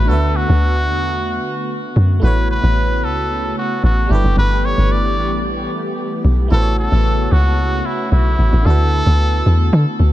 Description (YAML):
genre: amapiano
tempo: 112 BPM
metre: 4/4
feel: straight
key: A mixolydian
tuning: A4 = 440 Hz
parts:
  - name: trumpet with cup mute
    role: melody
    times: 0.0-10.1 s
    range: E4 to D5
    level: -21 LUFS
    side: equal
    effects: tape echo
  - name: barking FM electric piano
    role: accompaniment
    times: 0.0-10.1 s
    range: D3 to E5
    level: -26 LUFS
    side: right 3 dB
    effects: chorus, tape echo
  - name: warm analog pad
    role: sustained chords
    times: 0.0-10.1 s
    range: C#3 to G4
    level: -24 LUFS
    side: left 1 dB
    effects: chorus
  - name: deep log drum bass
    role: bass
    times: 0.0-10.1 s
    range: F#1 to D3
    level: -14 LUFS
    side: equal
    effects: none
room: digital ambience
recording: echo-heavy mix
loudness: -14 LUFS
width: side -14 dB against mid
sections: 0.0-10.1 A section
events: none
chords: 0.1 D6; 2.2 A69; 4.1 G69; 6.5 A69; 8.7 D6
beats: | 0.09 0.62 1.16 1.69 | 2.23 2.76 3.30 3.84 | 4.37 4.91 5.44 5.98 | 6.51 7.05 7.59 8.12 | 8.66 9.19 9.73